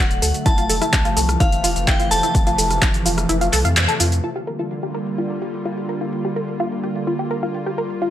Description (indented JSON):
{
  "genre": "progressive house",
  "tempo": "127 BPM",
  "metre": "4/4",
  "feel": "straight",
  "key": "G dorian",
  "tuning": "A4 = 440 Hz",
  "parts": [
    { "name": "glassy synth bell", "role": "melody", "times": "0.0-2.8 s", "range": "F5 to A5", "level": "-23 LUFS", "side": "left 2 dB", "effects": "chorus, sidechain pumping, tape echo" },
    { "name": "lush unison pad", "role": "sustained chords", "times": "0.1-8.1 s", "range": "C3 to F#4", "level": "-25 LUFS", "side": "right 1 dB", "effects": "chorus, sidechain pumping" },
    { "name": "tight sequenced synth", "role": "arpeggios", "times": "0.0-8.1 s", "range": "E4 to F5", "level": "-24 LUFS", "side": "equal", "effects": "chorus, sidechain pumping, tape echo" },
    { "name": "round analog bass", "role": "bass", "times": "0.0-4.2 s", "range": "D1 to F2", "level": "-22 LUFS", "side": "equal", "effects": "sidechain pumping" },
    { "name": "deep house drum kit", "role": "drums", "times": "0.1-8.1 s", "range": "handclaps, hi-hat, rim click, shaker", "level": "-21 LUFS", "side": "equal", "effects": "low-pass filter on hats, small room ambience, low-pass filter on snare, low-pass filter on perc" },
    { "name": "electronic kick drum", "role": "drums", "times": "0.5-2.9 s", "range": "none", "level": "-19 LUFS", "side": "equal", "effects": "small room ambience" }
  ],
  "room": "light reverb, digital ambience",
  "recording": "none",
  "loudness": "-17 LUFS",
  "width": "side -11 dB against mid",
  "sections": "0.0-4.2 A section; 4.2-8.1 B section",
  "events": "filter sweep on analog synth pad 0.0-4.2; kick drops out 3.3-4.2; band accent 3.8; filter sweep on synth arpeggio sound 4.2-8.1",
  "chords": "0.5 Fmaj7; 4.2 Gm7"
}